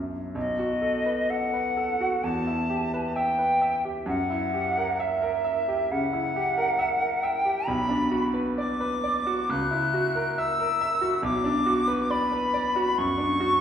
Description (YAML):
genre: classical, romantic duo for flute and grand piano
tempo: 66 BPM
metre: 4/4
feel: uneven beats, rubato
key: B minor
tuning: A4 = 440 Hz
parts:
  - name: bright grand piano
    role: accompaniment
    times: 0.0-13.6 s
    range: B1 to E5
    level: -27 LUFS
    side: right 1 dB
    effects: none
  - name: silver concert flute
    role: melody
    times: 0.4-13.6 s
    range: D#5 to F#6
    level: -25 LUFS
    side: left 1 dB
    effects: none
room: wet recital hall reverb, RT60 1.5 s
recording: heard from further back in the room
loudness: -23 LUFS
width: side -8 dB against mid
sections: 0.4-13.6 A section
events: none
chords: 0.4 B7; 2.2 Em; 4.1 F#7b9; 7.7 Bm; 9.5 F#7/C#; 11.2 Bm